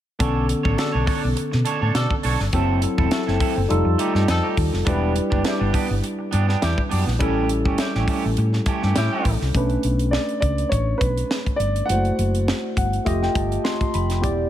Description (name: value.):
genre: polished 1980s jazz-funk pop.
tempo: 103 BPM.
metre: 4/4.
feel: swing 54% on 16ths.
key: B minor.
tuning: A4 = 441 Hz.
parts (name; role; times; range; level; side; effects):
barky tine electric piano; accompaniment; 0.2-14.5 s; D3 to C6; -24 LUFS; left 1 dB; overdrive, lush chorus.
electric guitar at the edge of break-up; riff; 0.2-9.5 s; A3 to C#5; -27 LUFS; right 6 dB; wide subtle chorus.
hollow-body short-scale fingered electric bass; bass; 0.2-14.4 s; E1 to B2; -22 LUFS; equal; none.
tight funk drum kit; drums; 0.2-14.4 s; hi-hat, kick drum, snare drum; -25 LUFS; equal; none.
warm horn section; second line; 0.8-9.4 s; C4 to A4; -31 LUFS; equal; none.
warm grand piano; melody; 10.1-13.0 s; B4 to F#5; -26 LUFS; right 1 dB; ping-pong delay.
room: light reverb.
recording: none.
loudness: -19 LUFS.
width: side -11 dB against mid.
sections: 0.2-9.5 A section; 9.5-14.5 B section.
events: tine electric piano fill 12.5-14.2.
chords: 0.2 Bm9; 2.5 F#m7b5; 3.7 F9; 4.9 Em7; 7.2 A7; 9.5 Bm9; 11.9 F#m7b5; 13.1 F9.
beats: | 0.20 0.78 1.36 1.95 | 2.53 3.12 3.70 4.28 | 4.87 5.45 6.04 6.62 | 7.21 7.79 8.38 8.96 | 9.55 10.13 10.72 11.31 | 11.89 12.48 13.06 13.65 | 14.24.